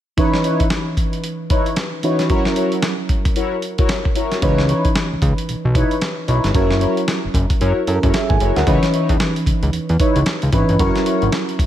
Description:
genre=R&B, new jack swing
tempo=113 BPM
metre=4/4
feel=swing 60% on 16ths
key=C# dorian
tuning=A4 = 440 Hz
part: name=mellow FM electric piano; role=accompaniment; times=0.2-11.7 s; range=E3 to G#5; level=-21 LUFS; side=right 2 dB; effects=chorus
part: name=mellow synth brass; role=stabs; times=0.2-11.3 s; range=D#4 to C#5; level=-22 LUFS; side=left 2 dB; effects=chorus, digital delay
part: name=dusty soul sampler-style drum kit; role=drums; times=0.2-11.7 s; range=hi-hat, kick drum, snare drum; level=-19 LUFS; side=equal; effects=none
part: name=fat analog bass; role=bass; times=4.4-11.7 s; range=F#1 to F#2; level=-18 LUFS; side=equal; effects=none
room=light reverb, digital ambience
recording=none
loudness=-15 LUFS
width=side -11 dB against mid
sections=0.2-8.7 A section; 8.7-11.7 B section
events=none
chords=0.2 C#m9; 2.3 F#7; 4.4 C#m9; 6.5 F#7; 8.7 C#m9; 10.8 F#7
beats=| 0.17 0.71 1.24 1.77 | 2.30 2.83 3.36 3.89 | 4.42 4.95 5.49 6.02 | 6.55 7.08 7.61 8.14 | 8.67 9.20 9.73 10.26 | 10.79 11.33

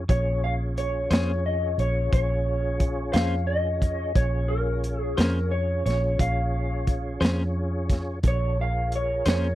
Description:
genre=slow blues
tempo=59 BPM (dotted quarters)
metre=12/8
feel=straight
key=Bb minor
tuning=A4 = 441 Hz
part: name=tonewheel organ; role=sustained chords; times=0.0-9.6 s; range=Db4 to Db5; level=-34 LUFS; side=right 1 dB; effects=overdrive, chorus vibrato, slow rotary speaker
part: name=vintage muted fingered electric bass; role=bass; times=0.0-9.6 s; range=Bb1 to F2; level=-26 LUFS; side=equal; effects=none
part: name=electric guitar through a small old amp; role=melody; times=0.1-9.6 s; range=Bb4 to F5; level=-28 LUFS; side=equal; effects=analog chorus
part: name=crunchy breakbeat drum kit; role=drums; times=0.1-9.4 s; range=hi-hat, kick drum, snare drum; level=-24 LUFS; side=equal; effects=none
part: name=clean electric guitar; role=accompaniment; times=1.1-9.5 s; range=Bb3 to C5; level=-28 LUFS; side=left 2 dB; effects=tremolo
room=little or no reverb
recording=dry, close 1970s-style studio recording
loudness=-22 LUFS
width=side -14 dB against mid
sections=0.0-9.6 A section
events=none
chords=0.0 Bbm7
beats=| 0.08 1.10 2.12 3.14 | 4.16 5.18 6.20 7.21 | 8.23 9.26

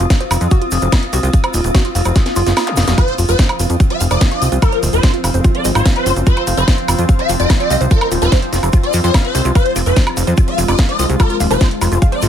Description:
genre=psychedelic trance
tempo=146 BPM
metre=4/4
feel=straight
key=F minor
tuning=A4 = 438 Hz
part: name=woody wave-folded pluck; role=riff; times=0.0-12.3 s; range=F4 to F5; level=-24 LUFS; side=moving between left 4 dB and right 5 dB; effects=chorus, auto-pan, sidechain pumping, ping-pong delay
part: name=plucky analog bass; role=bass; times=0.0-12.3 s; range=Eb1 to F2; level=-16 LUFS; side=equal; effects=none
part: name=garage drum kit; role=drums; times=0.0-12.3 s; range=hi-hat, snare drum, woodblock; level=-21 LUFS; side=equal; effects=studio reverb
part: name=tube shaker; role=percussion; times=0.0-12.3 s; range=none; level=-28 LUFS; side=right 3 dB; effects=none
part: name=granular cloud pad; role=texture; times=0.0-12.3 s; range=C4 to F6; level=-23 LUFS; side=left 1 dB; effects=built-in reverb, sidechain pumping
part: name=electronic kick drum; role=drums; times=0.1-12.1 s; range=none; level=-12 LUFS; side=equal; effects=studio reverb
part: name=zap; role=sound effects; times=2.7-2.8 s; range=none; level=-24 LUFS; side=left 1 dB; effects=none
part: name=swarming rave lead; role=melody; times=3.0-12.2 s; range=Bb4 to F5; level=-20 LUFS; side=left 1 dB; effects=chorus, phaser, sidechain pumping, ping-pong delay
part: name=evolving wavetable pad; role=sustained chords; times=3.5-12.3 s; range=F3 to C4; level=-24 LUFS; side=equal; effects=phaser, built-in reverb, sidechain pumping
part: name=vowel-sweep wobble bass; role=second line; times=5.3-5.6, 11.9-12.0 s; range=Ab3 to C4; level=-32 LUFS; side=right 1 dB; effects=none
room=little or no reverb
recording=none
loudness=-12 LUFS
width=side -9 dB against mid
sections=0.0-12.3 A section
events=drum fill 2.2-3.0; kick drops out 2.6-3.0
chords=0.0 F5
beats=0.10 0.51 0.92 | 1.33 1.75 2.16 2.57 | 2.98 3.39 3.80 4.21 | 4.62 5.03 5.45 5.86 | 6.27 6.68 7.09 7.50 | 7.91 8.32 8.73 9.14 | 9.55 9.96 10.38 10.79 | 11.20 11.61 12.02

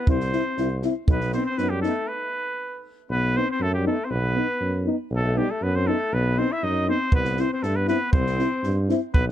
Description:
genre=balkan folk, Balkan brass band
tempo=119 BPM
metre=2/4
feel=straight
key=B phrygian dominant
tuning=A4 = 439 Hz
part: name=cornet with straight mute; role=melody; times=0.0-9.3 s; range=G4 to E5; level=-28 LUFS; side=right 1 dB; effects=none
part: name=warm alto saxophone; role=second line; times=0.0-9.3 s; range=G3 to E4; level=-30 LUFS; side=left 4 dB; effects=none
part: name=dark euphonium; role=accompaniment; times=0.1-9.0 s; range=B3 to C4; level=-32 LUFS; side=right 8 dB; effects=none
part: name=warm euphonium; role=accompaniment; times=0.1-9.0 s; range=D#4 to E4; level=-29 LUFS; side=left 8 dB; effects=none
part: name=warm tuba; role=bass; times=0.1-9.3 s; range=B1 to G2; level=-25 LUFS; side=right 1 dB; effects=none
part: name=compact cocktail drum kit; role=percussion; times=0.1-1.9, 7.1-9.3 s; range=kick drum, snare drum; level=-22 LUFS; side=right 1 dB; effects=none
room=light reverb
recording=dark, warm production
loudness=-21 LUFS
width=side -11 dB against mid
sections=0.0-3.1 A section; 3.1-9.3 A section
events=stop 2.1-3.1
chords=0.0 C; 1.1 B; 7.1 C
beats=| 0.08 0.58 | 1.09 1.59 | 2.09 2.60 | 3.10 3.60 | 4.11 4.61 | 5.11 5.61 | 6.12 6.62 | 7.12 7.62 | 8.13 8.63 | 9.13

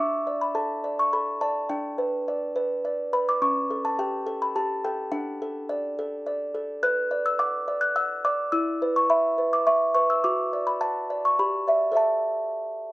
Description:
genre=classical, lullaby for music box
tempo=105 BPM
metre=3/4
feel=straight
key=D major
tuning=A4 = 440 Hz
part: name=music box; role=solo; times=0.0-12.9 s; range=C#4 to F#6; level=-23 LUFS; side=equal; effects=none
room=light reverb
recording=close, detailed microphones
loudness=-23 LUFS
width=side -18 dB against mid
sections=0.0-12.9 A section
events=none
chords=0.0 D5; 1.7 G/D; 3.4 A7/C#; 5.1 D; 6.8 Bm; 8.5 E5; 10.2 D/F#; 11.4 Em7/G; 12.0 A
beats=0.56 1.13 | 1.70 2.27 2.85 | 3.42 3.99 4.56 | 5.12 5.69 6.26 | 6.83 7.40 7.96 | 8.53 9.10 9.67 | 10.24 10.81 11.38 | 11.96 12.53

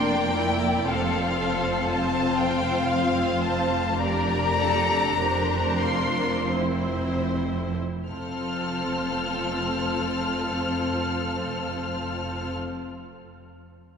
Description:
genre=classical, slow romantic movement for string orchestra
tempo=36-61 BPM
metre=3/4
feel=rubato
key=F major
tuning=A4 = 441 Hz
part: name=warm symphonic violin section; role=melody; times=0.0-12.5 s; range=F5 to F6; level=-28 LUFS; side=left 4 dB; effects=none
part: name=warm symphonic violin section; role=second line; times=0.0-12.5 s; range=A4 to F5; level=-29 LUFS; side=left 2 dB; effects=none
part: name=rich symphonic viola section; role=accompaniment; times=0.0-12.5 s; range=Bb3 to G4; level=-29 LUFS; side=left 1 dB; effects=none
part: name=warm studio double bass section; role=bass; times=0.0-12.5 s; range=F1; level=-31 LUFS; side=right 3 dB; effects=none
part: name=warm symphonic cello section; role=bass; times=0.0-12.5 s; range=F2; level=-32 LUFS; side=right 2 dB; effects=none
room=wet church reverb, RT60 3.4 s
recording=recorded in a church or concert hall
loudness=-23 LUFS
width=side -6 dB against mid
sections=0.0-8.1 A section; 8.1-12.3 B section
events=slowing down 0.0-8.1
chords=0.0 Bb/F; 0.9 F; 4.0 C7/F; 8.1 F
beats=| 0.87 1.88 2.92 | 4.01 5.20 6.54 | 8.09 9.49 10.91

